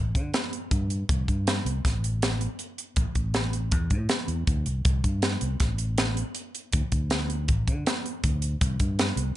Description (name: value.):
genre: math rock and midwest emo.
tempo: 160 BPM.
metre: 5/4.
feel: straight.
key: unclear.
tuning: A4 = 440 Hz.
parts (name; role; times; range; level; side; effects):
fingered electric bass; bass; 0.0-9.3 s; A1 to D3; -27 LUFS; equal; none.
crisp fusion drum kit; drums; 0.1-9.3 s; hi-hat, kick drum, snare drum; -26 LUFS; equal; none.
room: little or no reverb.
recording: nothing above 11.0 kHz.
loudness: -24 LUFS.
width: side -14 dB against mid.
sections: 0.0-9.4 A section.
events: none.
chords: none.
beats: 0.34 0.72 | 1.09 1.47 1.84 2.22 2.60 | 2.97 3.35 3.73 4.10 4.48 | 4.85 5.23 5.61 5.98 6.36 | 6.74 7.11 7.49 7.86 8.24 | 8.61 8.99.